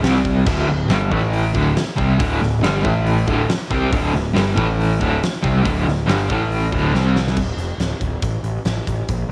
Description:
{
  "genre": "hard rock",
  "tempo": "139 BPM",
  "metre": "4/4",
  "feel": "straight",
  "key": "unclear",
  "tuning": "A4 = 439 Hz",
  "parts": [
    { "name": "overdriven semi-hollow guitar", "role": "riff", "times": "0.0-7.4 s", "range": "D2 to C4", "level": "-20 LUFS", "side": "equal", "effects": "tremolo" },
    { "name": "fuzz picked electric bass", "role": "bass", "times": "0.0-9.3 s", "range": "D1 to C2", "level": "-24 LUFS", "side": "equal", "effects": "overdrive" },
    { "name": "big rock drum kit", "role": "drums", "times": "0.0-9.2 s", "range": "crash cymbal, hi-hat, kick drum, snare drum", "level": "-26 LUFS", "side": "equal", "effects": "none" }
  ],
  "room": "light reverb, small room ambience",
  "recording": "home recording on cassette",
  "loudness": "-19 LUFS",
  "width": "mono",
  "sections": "0.0-7.4 A section; 7.4-9.3 B section",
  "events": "drum fill 6.9-7.4",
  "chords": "0.0 C5; 0.5 D5; 1.1 A5; 1.5 D5; 2.8 A5; 3.3 D5; 4.6 A5; 5.0 D5; 6.3 A5; 6.7 D5; 6.9 C5; 7.4 Dm; 8.2 N.C.",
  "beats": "0.03 | 0.46 0.90 1.33 1.76 | 2.19 2.62 3.06 3.49 | 3.92 4.35 4.78 5.21 | 5.64 6.07 6.50 6.93 | 7.36 7.79 8.22 8.65 | 9.08"
}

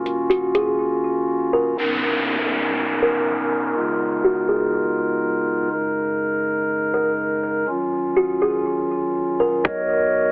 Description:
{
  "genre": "hip hop, atmospheric cloud-rap",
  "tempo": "122 BPM",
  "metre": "4/4",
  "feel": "half-time",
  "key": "unclear",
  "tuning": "A4 = 442 Hz",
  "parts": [
    { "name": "pipe organ, stopped flute", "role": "sustained chords", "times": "0.0-10.3 s", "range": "D#2 to D#5", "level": "-21 LUFS", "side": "equal", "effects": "sidechain pumping, low-pass filter" },
    { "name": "long sustained 808-style bass", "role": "bass", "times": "0.0-0.8, 9.6-10.3 s", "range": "D#1 to B1", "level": "-37 LUFS", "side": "equal", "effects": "none" },
    { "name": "trap drum kit", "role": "drums", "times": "0.1-0.7, 9.6-9.8 s", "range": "hi-hat, kick drum", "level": "-21 LUFS", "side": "equal", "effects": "none" },
    { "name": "kalimba", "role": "melody", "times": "0.3-9.6 s", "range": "F#4 to A#4", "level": "-22 LUFS", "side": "equal", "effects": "low-pass filter, tape echo" },
    { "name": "downlifter", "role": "sound effects", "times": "1.8-5.7 s", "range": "none", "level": "-25 LUFS", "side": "equal", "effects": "none" }
  ],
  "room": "light reverb",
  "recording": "heavily compressed radio sound, telephone sound",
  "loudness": "-18 LUFS",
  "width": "side -30 dB against mid",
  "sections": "0.0-1.8 A section; 1.8-9.6 B section",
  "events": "drums muted 0.8-1.8; filter sweep 1.8-9.6; hi-hats muted 9.6-10.3",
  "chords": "0.0 D#m9; 1.8 Bmaj7; 3.7 C#13; 5.7 F#69; 7.7 D#m9; 9.6 Bmaj7",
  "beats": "0.30 0.80 1.29 | 1.78 2.27 2.76 3.25 | 3.75 4.24 4.73 5.22 | 5.71 6.21 6.70 7.19 | 7.68 8.17 8.66 9.16 | 9.65 10.14"
}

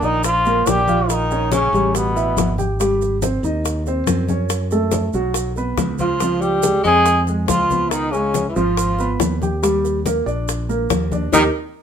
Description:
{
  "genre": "Afro-Cuban jazz",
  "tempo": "141 BPM",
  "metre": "4/4",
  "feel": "straight",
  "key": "unclear",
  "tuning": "A4 = 439 Hz",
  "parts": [
    { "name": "trombone with metal mute", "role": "melody", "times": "0.0-2.6, 6.0-11.4 s", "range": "B3 to Ab4", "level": "-19 LUFS", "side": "right 1 dB", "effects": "none" },
    { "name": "bright tenor saxophone", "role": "second line", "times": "0.0-2.6, 6.0-11.4 s", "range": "B2 to Ab3", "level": "-23 LUFS", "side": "left 4 dB", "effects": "none" },
    { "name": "warm concert grand piano", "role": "accompaniment", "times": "0.0-11.5 s", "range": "F3 to G5", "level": "-21 LUFS", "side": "right 1 dB", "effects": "none" },
    { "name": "modern bright fingered electric bass", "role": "bass", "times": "0.0-11.5 s", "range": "Ab1 to Gb2", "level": "-23 LUFS", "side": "right 1 dB", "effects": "none" },
    { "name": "congas", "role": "percussion", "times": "0.0-11.4 s", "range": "none", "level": "-26 LUFS", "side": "left 5 dB", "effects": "none" },
    { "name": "maracas", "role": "percussion", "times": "0.0-11.4 s", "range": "none", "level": "-28 LUFS", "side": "right 7 dB", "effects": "none" },
    { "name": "bongos", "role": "percussion", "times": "0.2-11.4 s", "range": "none", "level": "-26 LUFS", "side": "left 7 dB", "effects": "none" }
  ],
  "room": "moderate studio reverb, RT60 0.8 s",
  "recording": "minimal, uncompressed stereo recording",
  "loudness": "-16 LUFS",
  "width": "side -8 dB against mid",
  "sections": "0.0-11.8 A section",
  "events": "band accent 11.3-11.8",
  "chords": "0.0 Ebmaj9; 1.1 Bbm; 1.9 Asus2; 2.8 Abmaj7; 4.5 Gbm; 5.4 Bsus2; 6.2 Dbmaj7; 7.9 Db9; 9.6 Ebmaj7",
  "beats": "0.24 0.67 | 1.09 1.52 1.95 2.38 | 2.80 3.23 3.65 4.08 | 4.51 4.93 5.36 5.79 | 6.21 6.64 7.07 7.49 | 7.92 8.35 8.77 9.20 | 9.63 10.05 10.48 10.90 | 11.33"
}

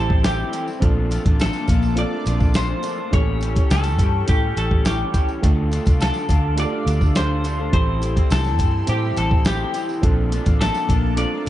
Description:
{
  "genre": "indie pop, bedroom pop",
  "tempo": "104 BPM",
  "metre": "4/4",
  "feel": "straight",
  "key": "unclear",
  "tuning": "A4 = 440 Hz",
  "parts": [
    { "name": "semi-hollow electric guitar", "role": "melody", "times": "0.0-11.5 s", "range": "G4 to D5", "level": "-26 LUFS", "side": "left 1 dB", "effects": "lush chorus, tape echo" },
    { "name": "electric guitar through a small old amp", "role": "accompaniment", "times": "0.0-11.5 s", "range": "A2 to G4", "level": "-29 LUFS", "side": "left 4 dB", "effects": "lush chorus, warbly pitch drift" },
    { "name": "reed electric piano", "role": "accompaniment", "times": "0.0-11.5 s", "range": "A3 to C5", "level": "-29 LUFS", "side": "right 5 dB", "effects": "cassette tape" },
    { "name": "phased analog pad", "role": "sustained chords", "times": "0.0-11.5 s", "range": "Bb3 to D6", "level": "-31 LUFS", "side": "left 5 dB", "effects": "phaser, chorus" },
    { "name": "vintage muted fingered electric bass", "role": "bass", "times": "0.0-11.5 s", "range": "A1 to A2", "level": "-21 LUFS", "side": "equal", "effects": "none" },
    { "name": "dusty soul sampler-style drum kit", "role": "drums", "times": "0.1-11.5 s", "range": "hi-hat, kick drum, snare drum", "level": "-20 LUFS", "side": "equal", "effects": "none" },
    { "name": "tambourine", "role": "percussion", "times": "0.2-11.5 s", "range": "none", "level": "-42 LUFS", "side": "right 5 dB", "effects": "none" }
  ],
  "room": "little or no reverb",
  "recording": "dark, warm production, nothing above 10.4 kHz",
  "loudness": "-17 LUFS",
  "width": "side -13 dB against mid",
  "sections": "0.0-11.5 A section",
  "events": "none",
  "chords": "0.0 Am7; 0.8 Bbmaj7; 3.1 A7; 5.4 Dm; 7.7 Am7; 10.0 Bbmaj7",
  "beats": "0.25 | 0.83 1.40 1.98 2.55 | 3.13 3.71 4.28 4.86 | 5.43 6.01 6.58 7.16 | 7.73 8.31 8.88 9.46 | 10.03 10.61 11.18"
}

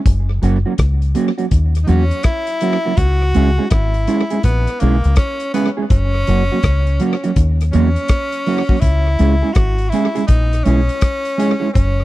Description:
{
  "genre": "roots reggae",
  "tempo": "82 BPM",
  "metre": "4/4",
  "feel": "swing 63% on 16ths",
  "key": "C# dorian",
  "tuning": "A4 = 439 Hz",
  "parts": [
    { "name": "deep dub fingered electric bass", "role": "bass", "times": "0.1-12.0 s", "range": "F#1 to E2", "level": "-15 LUFS", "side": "equal", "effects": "none" },
    { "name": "damped 70s drum kit", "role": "drums", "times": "0.1-12.0 s", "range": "hi-hat, kick drum, rim click", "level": "-17 LUFS", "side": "left 1 dB", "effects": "tape echo" },
    { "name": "mellow electric guitar", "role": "accompaniment", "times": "0.4-11.7 s", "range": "F#3 to G#4", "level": "-19 LUFS", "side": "right 3 dB", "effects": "analog chorus, tape echo" },
    { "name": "edgy tenor saxophone", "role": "melody", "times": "1.8-12.0 s", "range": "A#3 to F#4", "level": "-21 LUFS", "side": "left 1 dB", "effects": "tape echo" }
  ],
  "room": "small room ambience",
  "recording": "dry, close 1970s-style studio recording",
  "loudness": "-13 LUFS",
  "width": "side -16 dB against mid",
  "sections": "0.0-12.0 A section",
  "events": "none",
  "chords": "0.1 F#; 3.0 C#m; 5.9 F#; 8.8 C#m",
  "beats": "| 0.06 0.79 1.52 2.25 | 2.98 3.71 4.44 5.17 | 5.90 6.63 7.37 8.10 | 8.83 9.56 10.29 11.02 | 11.75"
}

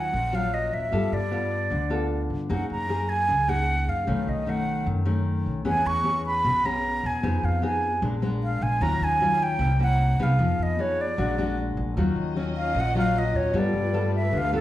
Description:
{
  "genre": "bossa nova",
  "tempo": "152 BPM",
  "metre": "4/4",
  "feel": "straight",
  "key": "Eb minor",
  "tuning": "A4 = 440 Hz",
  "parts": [
    { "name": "breathy concert flute", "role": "melody", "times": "0.0-14.6 s", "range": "A4 to C#6", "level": "-26 LUFS", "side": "right 1 dB", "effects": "plate reverb" },
    { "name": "nylon-string guitar", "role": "accompaniment", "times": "0.0-14.6 s", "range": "F#2 to A4", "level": "-27 LUFS", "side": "left 2 dB", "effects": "none" },
    { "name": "upright bass", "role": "bass", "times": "0.0-14.6 s", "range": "Bb1 to G2", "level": "-28 LUFS", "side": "equal", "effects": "none" },
    { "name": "warm symphonic string section", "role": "sustained chords", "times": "12.0-14.6 s", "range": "A3 to Eb5", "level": "-33 LUFS", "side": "left 1 dB", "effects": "none" }
  ],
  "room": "wet large studio reverb, RT60 0.8 s",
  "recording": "heard from further back in the room",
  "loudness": "-22 LUFS",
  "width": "side -14 dB against mid",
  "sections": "0.0-12.0 A section; 12.0-14.6 B section",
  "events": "flute solo 12.0-14.6",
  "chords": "0.0 Ebm9; 0.9 G9; 2.5 Gb69; 4.1 B9; 5.7 E6; 7.2 Fm7b5; 8.0 Bb7b9; 8.8 Ebm9; 9.6 C7b9; 10.4 Fm7b5; 11.2 Bbaug7; 12.0 Ebm9; 13.5 G9",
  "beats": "0.13 0.53 | 0.92 1.32 1.71 2.11 | 2.50 2.90 3.29 3.68 | 4.08 4.47 4.87 5.26 | 5.66 6.05 6.45 6.84 | 7.23 7.63 8.02 8.42 | 8.81 9.21 9.60 10.00 | 10.39 10.79 11.18 11.57 | 11.97 12.36 12.76 13.15 | 13.55 13.94 14.34"
}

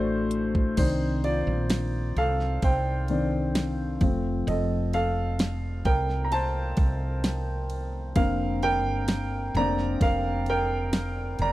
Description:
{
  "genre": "pop ballad",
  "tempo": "65 BPM",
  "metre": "4/4",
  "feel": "straight",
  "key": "unclear",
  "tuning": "A4 = 441 Hz",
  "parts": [
    { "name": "warm baby grand piano", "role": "accompaniment", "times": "0.0-11.5 s", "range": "D3 to Bb5", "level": "-27 LUFS", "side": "equal", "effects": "none" },
    { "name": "woody fretless electric bass", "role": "bass", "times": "0.0-11.5 s", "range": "F1 to C2", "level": "-29 LUFS", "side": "equal", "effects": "none" },
    { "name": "smooth R&B drum kit", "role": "drums", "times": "0.3-11.5 s", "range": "crash cymbal, hi-hat, kick drum, ride cymbal, snare drum", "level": "-25 LUFS", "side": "right 1 dB", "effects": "none" }
  ],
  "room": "little or no reverb",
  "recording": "dry, close 1970s-style studio recording",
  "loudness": "-24 LUFS",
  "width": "side -16 dB against mid",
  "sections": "0.8-11.5 A section",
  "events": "grand piano solo 0.8-11.5",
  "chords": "0.0 D; 0.8 Cmadd9; 4.0 F; 8.2 Bbadd9/F",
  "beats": "| 0.78 1.70 2.62 3.55 | 4.47 5.39 6.32 7.24 | 8.16 9.09 10.01 10.93"
}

